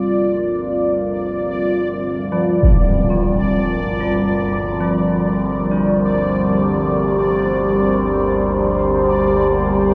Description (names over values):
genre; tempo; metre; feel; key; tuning
dark ambient drone; free time; none; none; G minor; A4 = 441 Hz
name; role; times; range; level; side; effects
deep dark ambient pad; sustained chords; 0.0-9.9 s; G3 to D5; -20 LUFS; equal; chorus, built-in reverb
overtone-sweeping drone; drone; 0.0-9.9 s; G1 to D2; -27 LUFS; equal; chorus, built-in reverb
bubbling stepped-filter texture; texture; 0.0-9.9 s; D5; -27 LUFS; equal; chorus, built-in reverb
gamelan-type bronze metallophone; arpeggios; 2.3-9.9 s; F3 to F4; -26 LUFS; equal; tape echo
impact; percussion; 2.6-2.9 s; none; -22 LUFS; equal; low-pass filter on sfx
room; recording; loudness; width
wet huge ambient reverb, RT60 7.1 s; cassette tape; -18 LUFS; mono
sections
0.0-9.9 A section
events
fade-in on synth drone 0.0-9.9; fade-out on bronze metallophone 0.0-9.9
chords
0.0 Gm7